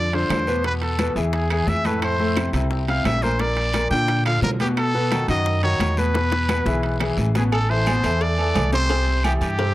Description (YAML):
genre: latin, salsa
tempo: 174 BPM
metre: 4/4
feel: straight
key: A minor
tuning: A4 = 440 Hz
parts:
  - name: clear trumpet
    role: melody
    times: 0.0-9.7 s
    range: G4 to G5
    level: -24 LUFS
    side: equal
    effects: none
  - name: warm grand piano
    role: accompaniment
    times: 0.0-9.7 s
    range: A2 to C5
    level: -25 LUFS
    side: left 2 dB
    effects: none
  - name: upright bass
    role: bass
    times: 0.0-9.7 s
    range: A1 to B2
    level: -23 LUFS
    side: equal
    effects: none
  - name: congas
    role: percussion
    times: 0.1-9.7 s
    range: none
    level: -30 LUFS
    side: left 1 dB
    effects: none
  - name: timbales and agogo bells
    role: percussion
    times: 0.1-9.6 s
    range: none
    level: -32 LUFS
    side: right 6 dB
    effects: none
  - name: bongos and cowbell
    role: percussion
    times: 0.3-9.7 s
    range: none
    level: -32 LUFS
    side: left 4 dB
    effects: none
  - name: claves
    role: percussion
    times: 0.3-9.4 s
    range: none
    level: -36 LUFS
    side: left 1 dB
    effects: none
  - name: guiro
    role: percussion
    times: 0.3-9.7 s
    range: none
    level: -37 LUFS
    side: left 1 dB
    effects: none
room: light reverb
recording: dry, gritty hardware recording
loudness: -18 LUFS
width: side -16 dB against mid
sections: 0.0-7.5 A section; 7.5-9.7 B section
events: drum fill 6.1-7.5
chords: 0.0 Bdim; 0.6 Esus4; 1.3 E; 2.0 Fmaj7; 3.4 Bb; 4.8 B7; 6.1 E; 7.5 Amadd9; 8.9 C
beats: 0.30 | 0.64 0.99 1.33 1.68 | 2.02 2.37 2.71 3.05 | 3.40 3.74 4.08 4.43 | 4.77 5.12 5.46 5.80 | 6.15 6.49 6.84 7.18 | 7.53 7.87 8.21 8.56 | 8.90 9.24 9.59